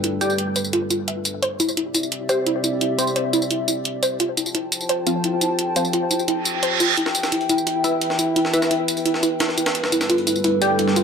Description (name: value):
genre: dark technical drum and bass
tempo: 173 BPM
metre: 4/4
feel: straight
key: E phrygian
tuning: A4 = 439 Hz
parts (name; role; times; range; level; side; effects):
- dark analog pad; sustained chords; 0.0-11.0 s; G3 to A5; -24 LUFS; equal; chorus
- soft round pluck; arpeggios; 0.0-11.0 s; E4 to E5; -23 LUFS; right 1 dB; wide subtle chorus, ping-pong delay
- electronic hi-hat and tambourine; drums; 0.0-11.0 s; none; -24 LUFS; equal; none
- filtered dub chord stab; stabs; 0.2-10.7 s; F3 to G5; -25 LUFS; left 1 dB; phaser, ping-pong delay
- reverse cymbal; sound effects; 6.4-7.0 s; none; -22 LUFS; right 8 dB; none
- jungle sampler-style drum kit; drums; 7.0-11.0 s; hi-hat, snare drum; -26 LUFS; left 1 dB; high-pass filter on hats, high-pass filter on snare, high-pass filter on room
room: moderate digital room reverb, RT60 1.2 s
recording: none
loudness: -18 LUFS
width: side -6 dB against mid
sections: 0.0-11.0 A section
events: filter sweep on analog synth pad 0.0-11.0; reverse cymbal 6.4-7.0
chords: 0.0 G7; 1.4 C; 4.2 F; 7.0 Em; 9.7 G7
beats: | 0.04 0.39 0.73 1.08 | 1.43 1.77 2.12 2.47 | 2.81 3.16 3.51 3.85 | 4.20 4.55 4.89 5.24 | 5.59 5.93 6.28 6.63 | 6.97 7.32 7.67 8.02 | 8.36 8.71 9.05 9.40 | 9.75 10.10 10.44 10.79